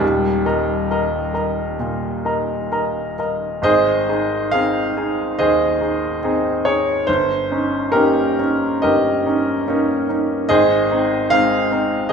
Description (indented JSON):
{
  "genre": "classical, romantic character piece for solo piano",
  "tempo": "64-75 BPM",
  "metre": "4/4",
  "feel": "rubato",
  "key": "Ab major",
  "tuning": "A4 = 439 Hz",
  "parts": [
    { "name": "clear baby grand piano", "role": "solo", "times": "0.0-12.1 s", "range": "Eb1 to Bb5", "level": "-16 LUFS", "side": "equal", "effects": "none" }
  ],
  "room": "wet recital hall reverb, RT60 1.6 s",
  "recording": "minimal, uncompressed stereo recording",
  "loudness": "-16 LUFS",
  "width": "side -6 dB against mid",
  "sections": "0.0-3.6 A section; 3.6-12.1 B section",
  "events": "none",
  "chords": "0.0 Eb; 3.6 Ab; 7.1 Eb7/G; 10.5 Ab",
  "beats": "| 0.01 0.92 1.81 2.73 | 3.65 4.53 5.38 6.23 | 7.08 7.93 8.83 9.67 | 10.49 11.31 12.12"
}